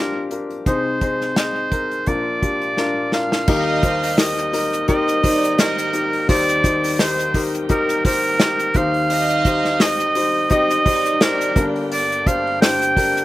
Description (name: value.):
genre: piano-driven pop.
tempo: 85 BPM.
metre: 4/4.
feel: swing 56% on 16ths.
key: Eb major.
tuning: A4 = 436 Hz.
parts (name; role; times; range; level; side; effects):
clear oboe; melody; 0.0-13.2 s; Bb4 to G5; -20 LUFS; right 2 dB; slapback echo.
warm upright piano; accompaniment; 0.0-13.2 s; G1 to Eb5; -22 LUFS; left 3 dB; slapback echo.
unplugged drum kit; drums; 0.3-13.2 s; crash cymbal, hi-hat, kick drum, snare drum; -20 LUFS; equal; none.
warm studio violin section; second line; 3.5-11.7 s; C4 to Eb5; -26 LUFS; right 2 dB; slapback echo.
bright tonewheel organ; sustained chords; 3.5-13.2 s; D3 to G4; -33 LUFS; right 1 dB; overdrive, fast rotary speaker.
room: little or no reverb.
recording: recorded outdoors, with no room sound.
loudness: -16 LUFS.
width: side -16 dB against mid.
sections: 0.0-3.5 A section; 3.5-13.2 B section.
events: drum fill 2.8-3.5.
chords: 0.0 Bb; 0.7 Ab/C; 2.1 Bb; 3.5 Eb; 8.7 Cm/Eb; 11.6 Gm.